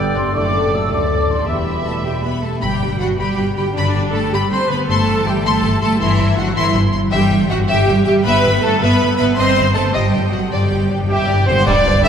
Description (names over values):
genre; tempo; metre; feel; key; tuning
cinematic, heroic adventure film score; 106 BPM (dotted quarters); 6/8; straight; G major; A4 = 440 Hz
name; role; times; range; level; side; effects
warm symphonic violin section; melody; 0.0-12.1 s; G4 to C6; -23 LUFS; left 3 dB; none
flute section; second line; 0.0-2.4 s; G5 to E6; -25 LUFS; right 1 dB; none
warm symphonic violin section; second line; 0.0-12.1 s; G3 to C6; -24 LUFS; left 3 dB; none
warm symphonic viola section; accompaniment; 0.0-12.1 s; G3 to C5; -21 LUFS; right 1 dB; none
clear trombone section; sustained chords; 0.0-2.4, 12.0-12.1 s; A2 to B3; -27 LUFS; right 1 dB; none
mellow French horn section; sustained chords; 0.0-2.4, 12.0-12.1 s; G3 to A4; -26 LUFS; left 3 dB; none
concert harp; arpeggios; 0.0-12.1 s; E2 to E6; -24 LUFS; left 5 dB; none
bright trumpet section; stabs; 0.0-2.4, 11.1-12.1 s; G4 to E5; -20 LUFS; right 1 dB; none
rich studio double bass section; bass; 0.0-12.1 s; E1 to D2; -20 LUFS; right 1 dB; none
rich symphonic cello section; bass; 0.0-12.1 s; D2 to C4; -22 LUFS; right 2 dB; none
timpani; percussion; 7.1-7.7, 10.5-12.1 s; G2; -23 LUFS; equal; none
cymbal swell, clash cymbals and concert bass drum; percussion; 9.4-12.1 s; none; -24 LUFS; equal; none
mellow clarinet; second line; 11.1-12.1 s; G4 to E5; -23 LUFS; right 2 dB; none
room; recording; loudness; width
wet church reverb, RT60 3.3 s; recorded in a church or concert hall; -14 LUFS; side -8 dB against mid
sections
0.0-2.6 A section; 2.6-11.7 B section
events
timpani fill 10.5-11.7; band accent 11.7-12.0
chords
0.3 D/F#; 1.5 Em; 2.6 G; 4.9 Am/G; 7.1 Em/G; 9.4 Cm/G; 10.5 G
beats
| 0.34 0.91 | 1.48 2.05 | 2.62 3.19 | 3.76 4.32 | 4.88 5.45 | 6.01 6.57 | 7.13 7.69 | 8.26 8.82 | 9.38 9.95 | 10.52 11.10 | 11.67